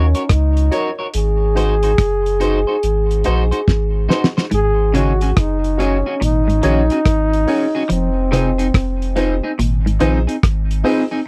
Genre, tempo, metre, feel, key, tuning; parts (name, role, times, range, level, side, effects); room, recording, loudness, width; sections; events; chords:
roots reggae; 71 BPM; 4/4; swing 65% on 16ths; A4 = 440 Hz
mellow trombone; melody; 0.0-9.6 s; C4 to Ab4; -22 LUFS; equal; dub echo
electric guitar at the edge of break-up; accompaniment; 0.0-11.2 s; C4 to Db5; -25 LUFS; equal; lush chorus, dub echo
dark upright piano; stabs; 0.0-11.0 s; Eb4 to Db5; -24 LUFS; equal
warm sub bass; bass; 0.0-10.8 s; F1 to Eb2; -20 LUFS; equal
cloth-damped thuddy drum kit; drums; 0.1-11.1 s; hi-hat, kick drum, rim click, snare drum; -20 LUFS; equal
semi-hollow electric guitar; arpeggios; 4.5-10.2 s; Ab2 to F3; -23 LUFS; equal; analog chorus
little or no reverb; dry, close 1970s-style studio recording; -17 LUFS; mono
0.0-4.5 A section; 4.5-11.3 B section
drum fill 3.7-4.5
0.0 Ebm7; 1.1 Ab7; 4.5 Ab7sus4; 7.9 Fm7